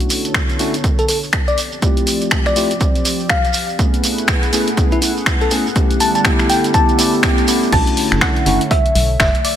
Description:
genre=deep house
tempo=122 BPM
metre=4/4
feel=swing 60% on 16ths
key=B minor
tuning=A4 = 440 Hz
part: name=warm analog pad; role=sustained chords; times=0.0-9.6 s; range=D3 to F#5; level=-25 LUFS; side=right 1 dB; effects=chorus, sidechain pumping
part: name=mellow tine electric piano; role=stabs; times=0.0-8.6 s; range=A3 to G#4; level=-19 LUFS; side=left 1 dB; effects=lush chorus, sidechain pumping, low-pass filter, digital delay
part: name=punchy analog drum machine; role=drums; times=0.0-9.6 s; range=crash cymbal, finger snaps, hi-hat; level=-19 LUFS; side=left 1 dB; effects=none
part: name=shekere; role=percussion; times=0.0-7.7 s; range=none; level=-25 LUFS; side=right 6 dB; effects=none
part: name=electronic kick drum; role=drums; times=0.3-9.3 s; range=none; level=-17 LUFS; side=equal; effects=none
part: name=bell-like FM electric piano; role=melody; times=1.0-7.1 s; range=E4 to A5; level=-20 LUFS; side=left 2 dB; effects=chorus, digital delay
part: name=soft round pluck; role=melody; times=7.7-9.6 s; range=D5 to A5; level=-19 LUFS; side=equal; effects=lush chorus, digital delay
part: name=organ-like FM bass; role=bass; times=7.7-9.3 s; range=F#1 to B1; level=-18 LUFS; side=equal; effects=sidechain pumping
part: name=vintage brush drum kit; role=drums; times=7.7-9.6 s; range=hi-hat, snare drum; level=-29 LUFS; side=equal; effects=none
room=light reverb, small room ambience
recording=none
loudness=-13 LUFS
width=side -10 dB against mid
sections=0.0-7.7 A section; 7.7-9.6 B section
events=build-up 0.0-7.7; filter sweep on tine electric piano 0.0-7.7; drop 7.7-9.6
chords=0.0 Bm11; 1.6 Dm11; 3.8 F#m11; 5.8 Em11; 7.7 Bm11

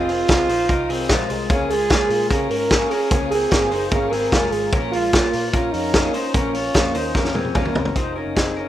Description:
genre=jangly indie pop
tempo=149 BPM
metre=4/4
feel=straight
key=Db major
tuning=A4 = 439 Hz
part: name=warm French horn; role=melody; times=0.0-8.7 s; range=Db4 to Bb4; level=-22 LUFS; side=right 2 dB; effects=plate reverb
part: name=fingerpicked twelve-string acoustic guitar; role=accompaniment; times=0.0-8.7 s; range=F2 to Ab4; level=-27 LUFS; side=right 3 dB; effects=plate reverb
part: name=bright studio string section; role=sustained chords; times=0.0-7.9 s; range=Bb4 to Eb6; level=-38 LUFS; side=left 1 dB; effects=none
part: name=electric guitar through a small old amp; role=arpeggios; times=0.0-8.7 s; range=Ab3 to Db5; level=-25 LUFS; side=left 6 dB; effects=plate reverb
part: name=vintage muted picked electric bass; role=bass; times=0.0-8.7 s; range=F1 to Db3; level=-31 LUFS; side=equal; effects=none
part: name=loose indie drum kit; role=drums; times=0.1-8.5 s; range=hi-hat, kick drum, snare drum, toms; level=-20 LUFS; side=equal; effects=none
room=moderate studio reverb, RT60 0.6 s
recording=rough home demo mix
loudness=-17 LUFS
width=side -12 dB against mid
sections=0.0-8.0 A section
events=drum fill 7.2-8.0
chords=0.0 Fm7; 1.5 Db6; 4.7 Bbm; 8.0 Fm7

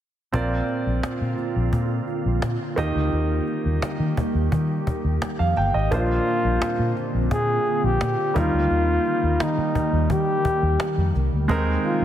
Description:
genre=1980s-style pop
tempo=86 BPM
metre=4/4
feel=straight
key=Bb mixolydian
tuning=A4 = 438 Hz
part: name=clear grand piano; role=accompaniment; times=0.3-12.0 s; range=Bb2 to G5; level=-27 LUFS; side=right 3 dB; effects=none
part: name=glassy FM pad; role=sustained chords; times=1.1-12.0 s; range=C3 to G4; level=-29 LUFS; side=equal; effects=ensemble chorus, built-in reverb
part: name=vintage muted fingered electric bass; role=bass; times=0.3-12.0 s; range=G1 to Eb3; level=-23 LUFS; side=equal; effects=none
part: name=cajon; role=drums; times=0.3-11.9 s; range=none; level=-29 LUFS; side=equal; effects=none
part: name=breathy flugelhorn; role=melody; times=5.9-12.0 s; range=Eb4 to Ab4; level=-24 LUFS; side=left 1 dB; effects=ping-pong delay
room=light reverb, small room ambience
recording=none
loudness=-20 LUFS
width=side -11 dB against mid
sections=0.3-5.9 A section; 5.9-12.0 B section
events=none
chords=0.3 Bbadd9; 2.8 Eb; 5.9 Bbadd9; 8.4 Eb; 11.5 Abadd9/Eb

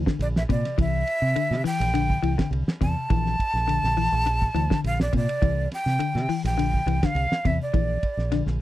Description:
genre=afrobeat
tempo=104 BPM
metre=4/4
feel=swing 54% on 16ths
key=unclear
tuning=A4 = 440 Hz
part: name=electric guitar at the edge of break-up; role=arpeggios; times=0.0-8.6 s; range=C3 to E3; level=-28 LUFS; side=left 7 dB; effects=wide subtle chorus
part: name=fingered electric bass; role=bass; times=0.0-8.6 s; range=Bb1 to C3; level=-25 LUFS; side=right 1 dB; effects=none
part: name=cloth-damped thuddy drum kit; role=drums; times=0.1-8.5 s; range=hi-hat, kick drum, ride cymbal, snare drum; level=-27 LUFS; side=right 1 dB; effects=none
part: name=breathy jazz flute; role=melody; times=0.2-8.4 s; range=D5 to A5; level=-26 LUFS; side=right 1 dB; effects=none
room=little or no reverb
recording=dry, close 1970s-style studio recording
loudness=-21 LUFS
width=side -14 dB against mid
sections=0.0-8.6 A section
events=none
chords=0.0 C9; 7.7 Bb

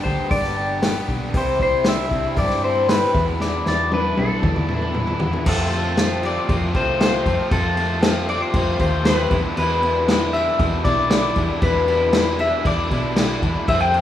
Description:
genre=indie rock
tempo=117 BPM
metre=4/4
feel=straight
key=unclear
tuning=A4 = 440 Hz
part: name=clean electric guitar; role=melody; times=0.0-14.0 s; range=A4 to G5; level=-22 LUFS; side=left 2 dB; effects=phaser, slapback echo
part: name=overdriven electric guitar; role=riff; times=0.0-14.0 s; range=E2 to G4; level=-28 LUFS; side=left 6 dB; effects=none
part: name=raw garage guitar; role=riff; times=0.0-14.0 s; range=E2 to G4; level=-28 LUFS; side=right 5 dB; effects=overdrive, wide subtle chorus, slapback echo
part: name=hollow-body short-scale fingered electric bass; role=bass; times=0.0-14.0 s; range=G1 to G2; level=-25 LUFS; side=equal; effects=none
part: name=vintage drum kit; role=drums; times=0.1-14.0 s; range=crash cymbal, hi-hat, kick drum, snare drum, toms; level=-22 LUFS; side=equal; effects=none
part: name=string machine, violins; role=sustained chords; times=1.3-14.0 s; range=E4 to D6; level=-34 LUFS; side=left 1 dB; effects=none
part: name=glockenspiel with brass mallets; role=second line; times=5.5-14.0 s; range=A5 to G6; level=-33 LUFS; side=left 2 dB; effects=none
room=light reverb, studio reverb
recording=rough home demo mix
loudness=-17 LUFS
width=side -11 dB against mid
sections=0.0-5.5 A section; 5.5-14.0 B section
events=drum fill 3.4-5.5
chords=0.0 G; 1.3 Cadd9; 3.1 E7sus4; 5.5 Fmaj7; 9.3 E7

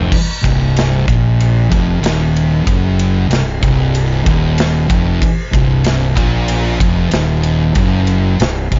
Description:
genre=stoner and doom metal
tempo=94 BPM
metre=4/4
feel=straight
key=C minor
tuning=A4 = 438 Hz
part: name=thick fuzz guitar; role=riff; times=0.0-8.8 s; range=C2 to Bb2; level=-17 LUFS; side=equal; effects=distortion
part: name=fuzz fingered electric bass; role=bass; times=0.0-8.8 s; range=C1 to Bb1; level=-20 LUFS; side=equal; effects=overdrive
part: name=big rock drum kit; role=drums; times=0.1-8.8 s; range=crash cymbal, kick drum, ride cymbal, snare drum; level=-20 LUFS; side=equal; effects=none
room=little or no reverb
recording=nothing above 7.5 kHz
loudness=-14 LUFS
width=mono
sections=0.1-8.8 A section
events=none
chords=0.1 Cm

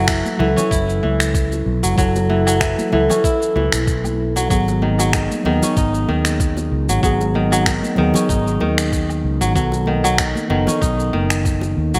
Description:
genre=organic downtempo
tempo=95 BPM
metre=4/4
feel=swing 55% on 16ths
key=F# dorian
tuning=A4 = 440 Hz
part: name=muted felt-like synth keys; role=accompaniment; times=0.0-12.0 s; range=D#3 to A4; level=-24 LUFS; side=equal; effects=chorus, sidechain pumping, digital delay
part: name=kora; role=arpeggios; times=0.0-12.0 s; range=D#3 to E4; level=-24 LUFS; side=equal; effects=low-pass filter, digital delay
part: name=fretless electric bass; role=bass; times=0.0-12.0 s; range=F#1 to D#2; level=-23 LUFS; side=equal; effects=subtle chorus
part: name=electronic finger snaps, shaker and woodblock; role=drums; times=0.1-12.0 s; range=none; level=-26 LUFS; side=equal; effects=gated reverb
part: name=electronic kick drum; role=drums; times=0.1-11.6 s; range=none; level=-24 LUFS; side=equal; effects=none
part: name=congas and bongos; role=percussion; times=0.3-12.0 s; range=none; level=-30 LUFS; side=equal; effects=none
room=wet plate reverb, RT60 2.0 s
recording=bright 1980s-style digital production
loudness=-18 LUFS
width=mono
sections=0.0-12.0 A section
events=none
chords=0.0 F#m7; 4.5 G#m7; 9.6 B7

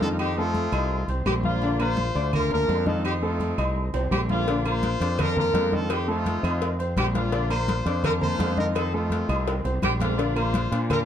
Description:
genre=latin, salsa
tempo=168 BPM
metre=4/4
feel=straight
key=Bb major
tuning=A4 = 435 Hz
part: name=bright horn section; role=melody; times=0.0-11.1 s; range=A3 to C5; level=-28 LUFS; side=left 1 dB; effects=none
part: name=clear grand piano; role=accompaniment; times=0.0-11.0 s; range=D3 to Eb6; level=-29 LUFS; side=left 2 dB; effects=none
part: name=fretless electric bass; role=bass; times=0.0-11.1 s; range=Bb1 to Bb2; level=-26 LUFS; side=right 1 dB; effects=none
part: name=congas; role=percussion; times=0.0-11.1 s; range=none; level=-30 LUFS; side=left 1 dB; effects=none
part: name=agogo bells and timbales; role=percussion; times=0.2-11.1 s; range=none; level=-34 LUFS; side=right 4 dB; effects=none
part: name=claves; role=percussion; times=0.2-11.1 s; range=none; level=-41 LUFS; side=right 6 dB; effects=none
part: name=cowbell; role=percussion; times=4.5-11.1 s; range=none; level=-33 LUFS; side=left 5 dB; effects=none
room=light reverb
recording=dark, warm production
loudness=-22 LUFS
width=side -9 dB against mid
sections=0.0-10.2 A section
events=drum fill 3.9-4.5, 9.5-10.2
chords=0.2 F7; 1.6 Bb; 3.0 F7; 4.5 Bb; 5.9 F7; 7.3 Bb; 8.8 F7; 10.2 Bb

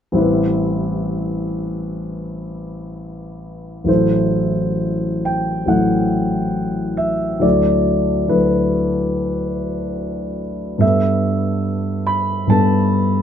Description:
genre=classical, impressionist solo piano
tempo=56-73 BPM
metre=4/4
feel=rubato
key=A dorian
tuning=A4 = 439 Hz
part: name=warm concert grand piano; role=solo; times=0.1-13.2 s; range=A1 to B5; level=-16 LUFS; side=equal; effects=none
room=little or no reverb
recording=close, detailed microphones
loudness=-16 LUFS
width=side -8 dB against mid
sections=0.2-3.9 A section; 3.9-13.2 B section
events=none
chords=0.2 Am9; 3.9 Am6; 7.4 D69; 10.8 G69

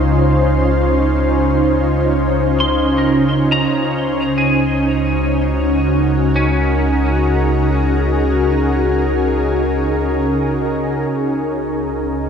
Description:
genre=ambient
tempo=free time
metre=none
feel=none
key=unclear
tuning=A4 = 440 Hz
part: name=ethereal airy pad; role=sustained chords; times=0.0-12.3 s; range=Db3 to C5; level=-15 LUFS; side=equal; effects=ensemble chorus, built-in reverb
part: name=warm sub bass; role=bass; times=0.0-12.3 s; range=Db2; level=-20 LUFS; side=equal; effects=none
part: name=clean electric guitar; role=arpeggios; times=2.6-10.7 s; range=Db4 to C6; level=-23 LUFS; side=left 1 dB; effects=analog chorus, diffuse ambient delay
room=wet lush hall reverb, RT60 2.8 s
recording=dreamy mix soaked in reverb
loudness=-14 LUFS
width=side -7 dB against mid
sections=0.0-11.1 A section; 11.1-12.3 B section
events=fade-in on clean electric guitar 0.0-11.1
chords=0.0 Dbmaj9; 3.7 Gb69/Db; 11.1 Dbsus2

